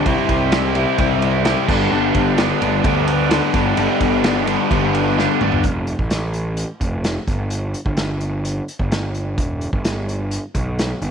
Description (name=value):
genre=indie rock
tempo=129 BPM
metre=4/4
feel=straight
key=G major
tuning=A4 = 440 Hz
part: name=overdriven electric guitar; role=riff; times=0.0-5.6 s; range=G2 to E4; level=-20 LUFS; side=left 13 dB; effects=phaser
part: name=overdriven electric guitar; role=riff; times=0.0-5.6 s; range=G2 to E4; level=-20 LUFS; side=right 13 dB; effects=lush chorus
part: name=fuzz picked electric bass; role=bass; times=0.1-11.1 s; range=E1 to D2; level=-22 LUFS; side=equal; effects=overdrive
part: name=vintage drum kit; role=drums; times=0.1-11.1 s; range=crash cymbal, hi-hat, kick drum, ride cymbal, snare drum, toms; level=-22 LUFS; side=right 1 dB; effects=none
room=light reverb, studio ambience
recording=1960s-style stereo with parts hard left and right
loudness=-16 LUFS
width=side -7 dB against mid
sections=0.0-5.6 A section; 5.6-11.1 B section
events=drum fill 5.2-5.6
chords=0.1 C; 1.7 G; 5.6 F; 7.3 N.C.; 9.4 Em